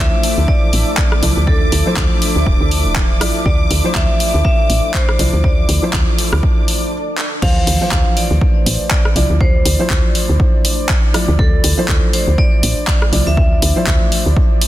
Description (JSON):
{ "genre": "deep house", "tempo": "121 BPM", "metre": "4/4", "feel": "swing 57% on 16ths", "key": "D minor", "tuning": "A4 = 444 Hz", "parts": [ { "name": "vibraphone with hard mallets", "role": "melody", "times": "0.0-14.2 s", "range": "A4 to F5", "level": "-23 LUFS", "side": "equal", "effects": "ping-pong delay" }, { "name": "hollow soft pad", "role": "sustained chords", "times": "0.1-14.7 s", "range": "F3 to E5", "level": "-28 LUFS", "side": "equal", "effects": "chorus, vintage 12-bit sampler grit, sidechain pumping" }, { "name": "felt-muted upright piano", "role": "stabs", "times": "0.0-14.7 s", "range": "E3 to D5", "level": "-23 LUFS", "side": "equal", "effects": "sidechain pumping, ping-pong delay" }, { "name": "woody FM bass", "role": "bass", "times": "0.0-14.3 s", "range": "D1 to D2", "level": "-16 LUFS", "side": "equal", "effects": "sidechain pumping" }, { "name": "granular cloud pad", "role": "texture", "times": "0.0-14.7 s", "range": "D4 to E5", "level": "-28 LUFS", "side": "equal", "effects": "built-in reverb, sidechain pumping" }, { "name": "warm studio violin section", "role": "texture", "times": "0.0-6.9 s", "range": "D6", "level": "-26 LUFS", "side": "equal", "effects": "none" }, { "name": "deep house drum kit", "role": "drums", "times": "0.2-14.7 s", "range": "crash cymbal, handclaps, hi-hat, rim click", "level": "-20 LUFS", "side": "equal", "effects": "small room ambience" }, { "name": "electronic kick drum", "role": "drums", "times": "0.5-14.5 s", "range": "none", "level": "-15 LUFS", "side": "equal", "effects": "small room ambience" } ], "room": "little or no reverb", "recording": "dense, heavily limited modern master", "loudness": "-12 LUFS", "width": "side -14 dB against mid", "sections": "0.0-7.4 A section; 7.4-14.7 B section", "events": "stop 6.9-7.4; drum fill 7.2; drop 7.4-14.7", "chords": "0.0 Dm9", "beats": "0.48 0.98 | 1.47 1.97 2.46 2.96 | 3.46 3.95 4.45 4.94 | 5.44 5.94 6.43 6.93 | 7.42 7.92 8.41 8.91 | 9.41 9.90 10.40 10.89 | 11.39 11.89 12.38 12.88 | 13.37 13.87 14.37" }